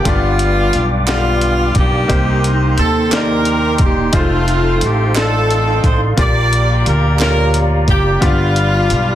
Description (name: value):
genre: slow gospel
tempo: 59 BPM (dotted quarters)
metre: 6/8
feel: straight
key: Bb major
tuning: A4 = 440 Hz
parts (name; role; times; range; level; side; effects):
- warm saxophone section; melody; 0.0-9.2 s; A3 to D5; -17 LUFS; equal; none
- clear baby grand piano; accompaniment; 0.0-9.2 s; G2 to D5; -20 LUFS; left 2 dB; none
- mellow tonewheel organ; sustained chords; 0.0-9.2 s; Bb3 to D6; -21 LUFS; right 2 dB; chorus vibrato, stopped rotary speaker
- upright bass; bass; 0.0-9.2 s; E1 to Eb2; -16 LUFS; equal; none
- breakbeat sampler-style drum kit; drums; 0.1-9.1 s; hi-hat, kick drum, snare drum; -17 LUFS; equal; none
- group handclap; percussion; 1.1-7.5 s; none; -26 LUFS; right 8 dB; none
room: light reverb, studio reverb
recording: dense, heavily limited modern master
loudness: -12 LUFS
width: side -12 dB against mid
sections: 0.0-9.2 A section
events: none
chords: 0.1 G7; 2.1 Cm7; 4.1 F7; 6.2 Bb6; 8.2 G7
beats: | 0.06 1.07 | 2.09 3.11 | 4.13 5.15 | 6.18 7.20 | 8.22